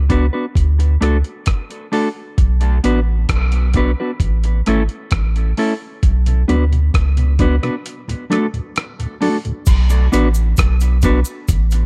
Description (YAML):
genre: dub reggae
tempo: 66 BPM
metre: 4/4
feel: straight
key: B minor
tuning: A4 = 440 Hz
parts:
  - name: warm sub bass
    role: bass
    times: 0.0-11.9 s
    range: G#1 to D2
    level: -17 LUFS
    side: equal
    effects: none
  - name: mellow electric guitar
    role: accompaniment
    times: 0.1-11.2 s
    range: A3 to B4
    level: -23 LUFS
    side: equal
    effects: tape echo
  - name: dusty soul sampler-style drum kit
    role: drums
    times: 0.1-11.9 s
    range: crash cymbal, hi-hat, kick drum, rim click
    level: -20 LUFS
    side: equal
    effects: none
  - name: mellow tonewheel organ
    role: accompaniment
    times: 6.3-9.5 s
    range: D2 to D4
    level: -27 LUFS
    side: equal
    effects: slow rotary speaker
  - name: cabasa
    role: percussion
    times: 9.7-11.9 s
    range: none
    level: -34 LUFS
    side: equal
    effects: none
room: little or no reverb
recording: dark, warm production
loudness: -17 LUFS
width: mono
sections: 0.0-9.7 A section; 9.7-11.9 B section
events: break 0.0-9.7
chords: 0.0 Bm; 0.6 D; 2.4 Bm; 4.2 A; 6.0 Bm; 7.8 D; 9.7 Bm